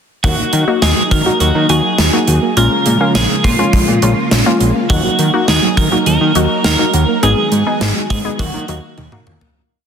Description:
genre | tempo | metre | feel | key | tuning
synth-pop | 103 BPM | 4/4 | straight | Eb minor | A4 = 440 Hz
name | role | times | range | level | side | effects
twelve-string electric guitar | melody | 0.2-9.2 s | F4 to Bb4 | -18 LUFS | right 2 dB | spring reverb, ping-pong delay
warbly dusty pluck | accompaniment | 0.2-9.4 s | Bb3 to Ab4 | -19 LUFS | left 3 dB | chorus
string machine, violins | sustained chords | 0.2-9.5 s | Db3 to F5 | -20 LUFS | equal | ensemble chorus
soft round pluck | arpeggios | 0.2-9.5 s | Gb3 to Gb4 | -22 LUFS | right 4 dB | chorus, ping-pong delay
fat analog bass | bass | 0.2-9.4 s | Ab1 to Eb3 | -16 LUFS | equal | none
gated 80s drum kit | drums | 0.2-9.5 s | hi-hat, kick drum, snare drum, toms | -17 LUFS | equal | none
room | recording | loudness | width
moderate concert hall reverb, RT60 2.3 s | dense, heavily limited modern master | -11 LUFS | side -7 dB against mid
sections
0.2-9.6 chorus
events
fade-out 7.2-9.6; drum fill 9.0-9.6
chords
0.2 Ebm; 2.6 Bbm7; 4.9 Ebm; 7.2 Abm7; 8.4 Ebmadd9

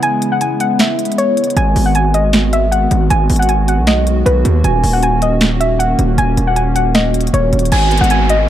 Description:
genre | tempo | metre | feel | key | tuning
hip hop, trap | 156 BPM | 4/4 | half-time | G# minor | A4 = 440 Hz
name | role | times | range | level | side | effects
soft round pluck | melody | 0.0-8.5 s | B4 to G#5 | -16 LUFS | left 1 dB | chorus, low-pass filter, digital delay
dark baby grand piano | accompaniment | 0.0-1.6 s | E3 to G#4 | -31 LUFS | left 7 dB | none
hollow soft pad | sustained chords | 0.0-8.5 s | C#3 to F#4 | -18 LUFS | equal | chorus
trap drum kit | drums | 0.0-8.4 s | crash cymbal, finger snaps, hi-hat, snare drum | -18 LUFS | equal | none
distorted 808-style bass | bass | 1.6-8.5 s | D#1 to D#2 | -14 LUFS | equal | distortion
downlifter | sound effects | 7.7-8.5 s | none | -20 LUFS | equal | none
room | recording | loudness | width
digital ambience | dark, warm production | -11 LUFS | side -11 dB against mid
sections
0.0-7.7 A section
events
break 0.0-1.6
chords
0.0 C#m7; 1.6 G#m7; 4.6 D#m7; 7.7 G#m7

